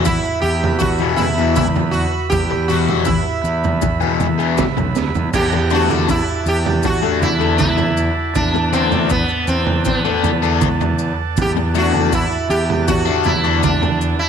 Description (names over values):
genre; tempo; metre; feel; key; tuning
psychedelic rock; 80 BPM; 4/4; straight; unclear; A4 = 440 Hz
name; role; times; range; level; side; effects
sitar; melody; 0.0-14.3 s; B3 to G4; -20 LUFS; right 1 dB; slapback echo
combo organ; sustained chords; 0.0-14.3 s; A4 to B5; -27 LUFS; right 11 dB; none
fuzz guitar; riff; 0.0-13.9 s; E2 to D4; -21 LUFS; left 14 dB; distortion, phaser
fuzz fingered electric bass; bass; 0.0-14.1 s; B1 to E2; -20 LUFS; equal; overdrive
crunchy breakbeat drum kit; drums; 0.1-14.0 s; crash cymbal, kick drum, snare drum, toms; -21 LUFS; right 4 dB; none
maracas; percussion; 0.1-14.2 s; none; -34 LUFS; left 15 dB; none
room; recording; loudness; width
moderate echo chamber reverb, RT60 2.0 s; 1960s-style stereo with parts hard left and right; -14 LUFS; side -7 dB against mid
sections
0.0-14.3 A section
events
drum fill 5.0-5.3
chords
0.0 E5; 5.3 D/E